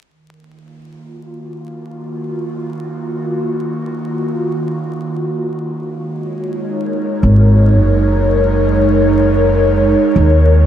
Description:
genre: ambient dub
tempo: free time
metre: none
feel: none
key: Eb minor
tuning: A4 = 438 Hz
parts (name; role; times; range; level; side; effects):
- airy breathy pad; sustained chords; 0.1-10.7 s; Eb3 to Db5; -16 LUFS; right 1 dB; chorus
- upright bass; bass; 7.2-10.7 s; Gb1 to Eb2; -11 LUFS; equal; none
room: moderate plate reverb, RT60 2.7 s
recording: dreamy mix soaked in reverb, vinyl crackle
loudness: -13 LUFS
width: side -10 dB against mid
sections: 0.1-10.7 A section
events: fade-in on analog synth pad 0.1-10.7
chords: 0.1 Ebmadd9; 5.9 Ab7sus4

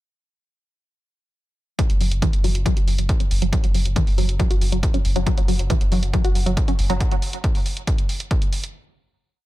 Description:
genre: driving peak-time techno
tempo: 138 BPM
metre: 4/4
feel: straight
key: unclear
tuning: A4 = 441 Hz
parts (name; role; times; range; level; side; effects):
- tight sequenced synth; riff; 1.8-6.9 s; E3 to F#4; -26 LUFS; equal; chorus, tube saturation, sidechain pumping, tape echo
- electronic hi-hat; drums; 1.8-8.7 s; none; -31 LUFS; right 2 dB; none
- electronic kick drum; drums; 1.8-8.4 s; none; -20 LUFS; equal; none
- saturated sub bass; bass; 1.9-7.0 s; F#1; -22 LUFS; equal; tube saturation, sidechain pumping, low-pass filter
room: little or no reverb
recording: echo-heavy mix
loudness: -18 LUFS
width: side -16 dB against mid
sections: 1.8-8.7 groove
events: filter sweep on synth arpeggio sound 1.8-7.0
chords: 1.8 F#5

